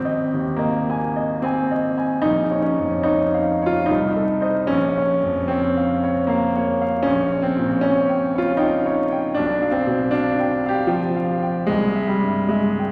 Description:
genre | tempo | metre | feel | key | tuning
classical, romantic character piece for solo piano | 76 BPM | 3/4 | uneven beats, rubato | unclear | A4 = 439 Hz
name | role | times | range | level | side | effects
clear grand piano | solo | 0.0-12.9 s | Ab1 to Ab5 | -20 LUFS | equal | none
room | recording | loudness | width
wet scoring stage reverb, RT60 1.5 s | vinyl crackle | -20 LUFS | mono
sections
0.0-12.9 A section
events
none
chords
0.0 Ab; 2.3 Bbm; 3.9 Adim/C; 4.7 Bbm; 7.1 Gdim/Bb; 9.4 G7/B; 11.7 C

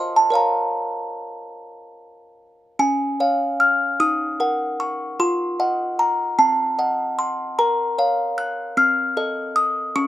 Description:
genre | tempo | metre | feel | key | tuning
classical, lullaby for music box | 50 BPM (dotted quarters) | 6/8 | straight | Bb minor | A4 = 441 Hz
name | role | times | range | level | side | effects
music box | solo | 0.0-10.1 s | C4 to Gb6 | -18 LUFS | equal | none
room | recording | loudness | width
light reverb | dark, warm production | -18 LUFS | side -14 dB against mid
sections
0.0-2.8 A section; 2.8-10.1 B section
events
none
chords
0.4 Bbm; 2.8 Db; 4.0 Ebm; 5.2 F7b9; 7.6 Bbm; 8.8 Adim/C

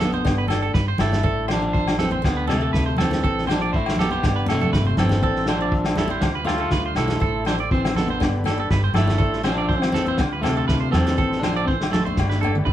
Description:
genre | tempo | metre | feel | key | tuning
highlife guitar band | 121 BPM | 4/4 | swing 53% on 16ths | A minor | A4 = 440 Hz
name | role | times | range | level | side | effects
electric guitar at the edge of break-up | melody | 0.0-12.7 s | C3 to G4 | -24 LUFS | left 1 dB | none
clean electric guitar | arpeggios | 0.0-12.7 s | A4 to D5 | -27 LUFS | right 6 dB | none
upright bass | bass | 0.0-12.7 s | G1 to E2 | -26 LUFS | equal | none
vintage drum kit | drums | 0.0-12.7 s | kick drum, snare drum, toms | -24 LUFS | equal | none
picked swing-style acoustic guitar | accompaniment | 0.1-12.7 s | A3 to E4 | -34 LUFS | left 6 dB | none
congas | percussion | 0.1-12.5 s | none | -28 LUFS | equal | none
agogo bells | percussion | 0.3-12.6 s | none | -32 LUFS | left 7 dB | none
combo organ | sustained chords | 5.2-12.7 s | C4 to C5 | -35 LUFS | left 1 dB | none
room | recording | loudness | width
wet studio reverb, RT60 0.6 s | band playing live in one room | -18 LUFS | side -12 dB against mid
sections
0.0-12.7 A section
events
drum fill 12.2-12.7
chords
0.3 Gadd9; 1.2 Am; 2.2 D5; 3.2 Am; 4.2 Gadd9; 5.2 Am; 6.2 Dm7; 7.2 Am; 8.2 Gadd9; 9.2 Am; 10.2 Dm7; 11.2 Am; 12.2 Gadd9

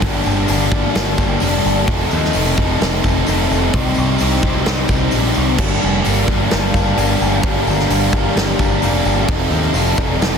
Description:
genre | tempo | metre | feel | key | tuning
rock, shoegaze and dream pop | 130 BPM | 4/4 | straight | G minor | A4 = 440 Hz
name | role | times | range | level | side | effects
biting overdriven guitar | riff | 0.0-10.4 s | F2 to Eb4 | -19 LUFS | left 13 dB | lush chorus
biting overdriven guitar | riff | 0.0-10.4 s | G2 to A4 | -20 LUFS | right 15 dB | reverse reverb
growling picked electric bass | bass | 0.0-10.4 s | F1 to Eb2 | -20 LUFS | equal | overdrive
huge arena drum kit | drums | 0.0-10.3 s | crash cymbal, hi-hat, kick drum, snare drum | -20 LUFS | equal | soft clipping on kick
tambourine | percussion | 0.1-10.3 s | none | -35 LUFS | left 10 dB | none
glassy FM pad | sustained chords | 6.1-10.4 s | G4 to Bb5 | -25 LUFS | left 1 dB | ensemble chorus, built-in reverb
room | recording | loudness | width
little or no reverb | dense, heavily limited modern master | -14 LUFS | side -6 dB against mid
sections
0.0-10.4 A section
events
none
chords
0.0 Gm; 1.9 F7; 3.7 Cm; 5.6 Gm7; 9.3 F13

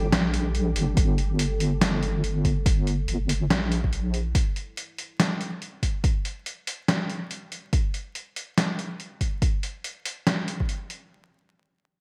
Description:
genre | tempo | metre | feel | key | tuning
deep dubstep | 142 BPM | 4/4 | swing 59% on 16ths, half-time | G dorian | A4 = 440 Hz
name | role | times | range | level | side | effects
deep dark ambient pad | sustained chords | 0.0-7.7 s | G3 to A4 | -38 LUFS | equal | chorus, built-in reverb
deep soft wobble bass | bass | 0.0-4.3 s | G1 to Bb1 | -27 LUFS | equal | chorus
flickering grainy texture | texture | 0.0-1.0 s | G3 to G4 | -42 LUFS | equal | built-in reverb
trip hop sampler-style drum kit | drums | 0.1-11.0 s | hi-hat, snare drum | -29 LUFS | equal | gated reverb
electronic kick drum | drums | 1.0-10.7 s | none | -26 LUFS | equal | none
room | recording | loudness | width
light reverb, digital ambience | bright 1980s-style digital production, vinyl crackle | -26 LUFS | mono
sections
0.0-11.1 A section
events
none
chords
0.0 G5

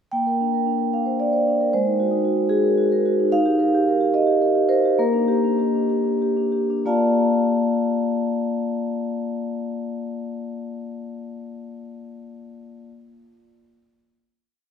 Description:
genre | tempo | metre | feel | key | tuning
classical, contemporary piece for solo vibraphone | 62-77 BPM (dotted quarters) | 6/8 | straight | Bb major | A4 = 440 Hz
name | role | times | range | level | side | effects
vibraphone with medium mallets | solo | 0.1-12.9 s | Ab3 to A5 | -20 LUFS | equal | none
room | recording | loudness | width
wet church reverb, RT60 3.5 s | recorded in a church or concert hall | -19 LUFS | side -7 dB against mid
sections
0.1-6.8 A section; 6.8-10.7 final chord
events
slowing down 2.5-6.8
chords
0.1 Bbadd9; 1.7 Ab9; 3.3 Eb; 5.0 Bb6; 6.8 Bbmaj7

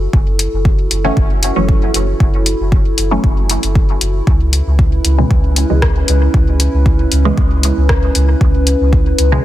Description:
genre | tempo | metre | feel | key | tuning
dub techno | 116 BPM | 4/4 | straight | F# minor | A4 = 440 Hz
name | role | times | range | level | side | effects
dark analog pad | sustained chords | 0.0-9.4 s | C#4 to B4 | -20 LUFS | right 1 dB | chorus, phaser, sidechain pumping
soft dub sub bass | bass | 0.0-9.4 s | F#1 to C#2 | -15 LUFS | equal | sidechain pumping
electronic kick drum | drums | 0.1-9.0 s | none | -13 LUFS | equal | overdrive
deep house drum kit | drums | 0.4-9.3 s | hi-hat, rim click | -18 LUFS | left 2 dB | overdrive
filtered dub chord stab | stabs | 1.0-9.4 s | B2 to C#4 | -20 LUFS | equal | phaser, sidechain pumping, dub echo
room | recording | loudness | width
little or no reverb | dense, heavily limited modern master | -11 LUFS | side -14 dB against mid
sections
0.0-9.4 A section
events
none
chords
0.0 F#m7; 4.3 C#m7

